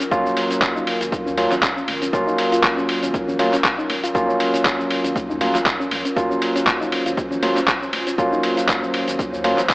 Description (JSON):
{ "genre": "deep house", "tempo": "119 BPM", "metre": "4/4", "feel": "swing 55% on 16ths", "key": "Eb dorian", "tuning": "A4 = 442 Hz", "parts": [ { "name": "dark analog pad", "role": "sustained chords", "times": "0.0-9.7 s", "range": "Gb3 to C5", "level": "-28 LUFS", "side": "equal", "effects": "chorus, phaser, sidechain pumping" }, { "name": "soft round pluck", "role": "arpeggios", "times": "0.0-9.6 s", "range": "Db4 to F4", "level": "-28 LUFS", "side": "left 1 dB", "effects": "chorus, sidechain pumping, tape echo" }, { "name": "round analog bass", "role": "bass", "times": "0.0-9.7 s", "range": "Eb1 to Eb2", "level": "-42 LUFS", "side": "equal", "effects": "sidechain pumping" }, { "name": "dusty soul sampler-style drum kit", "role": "drums", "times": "0.0-9.7 s", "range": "cabasa, handclaps, hi-hat, ride cymbal", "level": "-22 LUFS", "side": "equal", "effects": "overdrive" }, { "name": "overdriven tine electric piano", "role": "stabs", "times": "0.1-9.6 s", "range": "Gb3 to F4", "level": "-21 LUFS", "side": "equal", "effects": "sidechain pumping, tape echo" }, { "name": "electronic kick drum", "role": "drums", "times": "0.1-9.7 s", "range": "none", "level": "-27 LUFS", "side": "equal", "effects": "none" }, { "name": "congas", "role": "percussion", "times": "0.4-9.7 s", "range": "none", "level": "-36 LUFS", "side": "left 1 dB", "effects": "none" } ], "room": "light reverb", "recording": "AM radio sound", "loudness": "-17 LUFS", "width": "side -23 dB against mid", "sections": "0.0-9.7 A section", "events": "none", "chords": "0.0 Ebm9" }